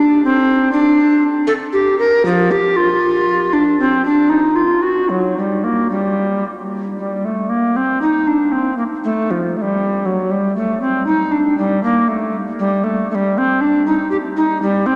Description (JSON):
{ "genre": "classical, baroque-style fantasia for unaccompanied recorder", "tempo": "118 BPM", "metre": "3/4", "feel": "rubato", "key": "G minor", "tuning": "A4 = 441 Hz", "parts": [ { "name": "bass recorder", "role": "solo", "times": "0.0-15.0 s", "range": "F3 to Bb4", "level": "-16 LUFS", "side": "equal", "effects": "none" } ], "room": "wet cathedral reverb, RT60 7.0 s", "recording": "none", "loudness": "-16 LUFS", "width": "mono", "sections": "0.0-7.0 A section; 7.0-15.0 B section", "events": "none", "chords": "none" }